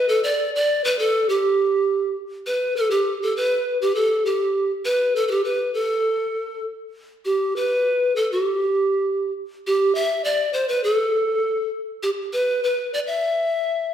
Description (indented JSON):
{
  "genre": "andean folk",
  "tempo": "100 BPM",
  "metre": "2/4",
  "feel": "straight",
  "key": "unclear",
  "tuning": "A4 = 440 Hz",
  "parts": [
    { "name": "bright polished pan flute", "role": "solo", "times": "0.0-13.9 s", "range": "G4 to E5", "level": "-19 LUFS", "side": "equal", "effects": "none" }
  ],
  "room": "wet recital hall reverb, RT60 1.4 s",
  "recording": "recorded in a church or concert hall",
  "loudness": "-19 LUFS",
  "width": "side -9 dB against mid",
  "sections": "0.0-2.5 A section; 2.5-7.2 B section; 7.2-13.9 C section",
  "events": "none",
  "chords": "none"
}